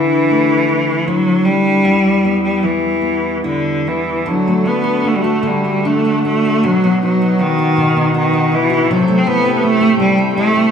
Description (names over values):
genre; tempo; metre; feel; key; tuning
celtic folk, Celtic slow air; 70-83 BPM; 3/4; rubato; unclear; A4 = 440 Hz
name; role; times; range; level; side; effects
bright cello; melody; 0.0-10.7 s; D3 to C4; -14 LUFS; equal; none
fingerpicked steel-string acoustic guitar; accompaniment; 0.0-10.7 s; E2 to G4; -19 LUFS; left 3 dB; none
pedal harmonium; sustained chords; 4.3-10.7 s; C3 to G5; -23 LUFS; right 2 dB; none
room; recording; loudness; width
wet recital hall reverb, RT60 1.5 s; recorded in a church or concert hall; -12 LUFS; side -7 dB against mid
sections
0.0-4.3 A section; 4.3-10.7 B section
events
none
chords
0.0 Dsus2; 1.8 Em; 4.3 D; 6.6 B; 8.9 Am7/C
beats
0.30 1.07 | 1.84 2.63 3.45 | 4.28 5.07 5.87 | 6.64 7.41 8.15 | 8.89 9.62 10.35